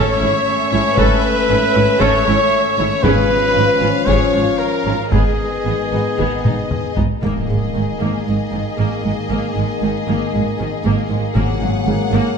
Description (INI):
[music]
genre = cinematic, epic orchestral film score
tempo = 116 BPM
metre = 4/4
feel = straight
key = G# dorian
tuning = A4 = 440 Hz
[part]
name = clear symphonic violin section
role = melody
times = 0.0-12.4 s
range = D#5 to F#5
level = -27 LUFS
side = left 6 dB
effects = none
[part]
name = warm symphonic violin section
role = second line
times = 0.0-12.4 s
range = G#4 to C#5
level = -23 LUFS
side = left 3 dB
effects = none
[part]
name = clear studio viola section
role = accompaniment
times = 0.0-12.4 s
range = C#3 to A4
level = -24 LUFS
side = equal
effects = none
[part]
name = mellow French horn section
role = sustained chords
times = 0.0-12.4 s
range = D#3 to C#4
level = -23 LUFS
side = left 5 dB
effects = none
[part]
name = warm trumpet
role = stabs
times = 0.0-7.0 s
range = G#4 to C#5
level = -19 LUFS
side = right 2 dB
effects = none
[part]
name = rich symphonic cello section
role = bass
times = 0.0-12.2 s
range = G#2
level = -22 LUFS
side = right 3 dB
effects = none
[part]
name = rich symphonic double bass section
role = bass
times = 0.0-12.2 s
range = G#1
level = -24 LUFS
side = right 5 dB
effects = none
[part]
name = taiko ensemble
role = drums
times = 1.0-8.2, 11.4-12.3 s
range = none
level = -21 LUFS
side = left 1 dB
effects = none
[part]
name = timpani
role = percussion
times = 3.0-3.8, 7.2-8.0, 11.4-12.1 s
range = G#2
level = -26 LUFS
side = left 3 dB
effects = none
[part]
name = impact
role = sound effects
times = 7.2-9.3 s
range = none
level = -29 LUFS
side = equal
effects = none
[sound]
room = moderate concert hall reverb, RT60 1.8 s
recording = dark, warm production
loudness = -14 LUFS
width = side -6 dB against mid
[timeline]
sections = 0.0-7.2 A section; 7.2-12.4 B section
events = drum fill 6.4-7.2; impact 7.2-9.3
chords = 0.0 A/G#; 3.0 C#/G#; 5.1 G#m; 7.2 G#sus2; 11.4 F#/G#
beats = 0.46 | 0.98 1.49 2.00 2.52 | 3.04 3.55 4.07 4.59 | 5.12 5.64 6.18 6.70 | 7.23 7.75 8.27 8.79 | 9.30 9.82 10.34 10.85 | 11.36 11.87